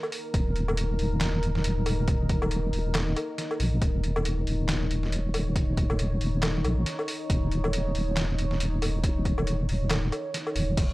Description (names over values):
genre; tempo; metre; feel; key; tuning
deep dubstep; 138 BPM; 4/4; swing 58% on 16ths, half-time; unclear; A4 = 440 Hz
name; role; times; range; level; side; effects
deep dark ambient pad; sustained chords; 0.0-10.9 s; Eb4 to Db5; -34 LUFS; left 1 dB; chorus, built-in reverb
trip hop sampler-style drum kit; drums; 0.0-10.9 s; crash cymbal, handclaps, hi-hat, snare drum, woodblock; -32 LUFS; equal; overdrive, studio reverb
deep soft wobble bass; bass; 0.3-10.9 s; Eb1 to Bb1; -26 LUFS; equal; chorus
electronic kick drum; drums; 0.3-10.9 s; none; -27 LUFS; equal; overdrive, studio reverb
room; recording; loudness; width
little or no reverb; dry, gritty hardware recording, cassette tape; -25 LUFS; side -19 dB against mid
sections
0.0-10.9 A section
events
none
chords
0.0 Eb5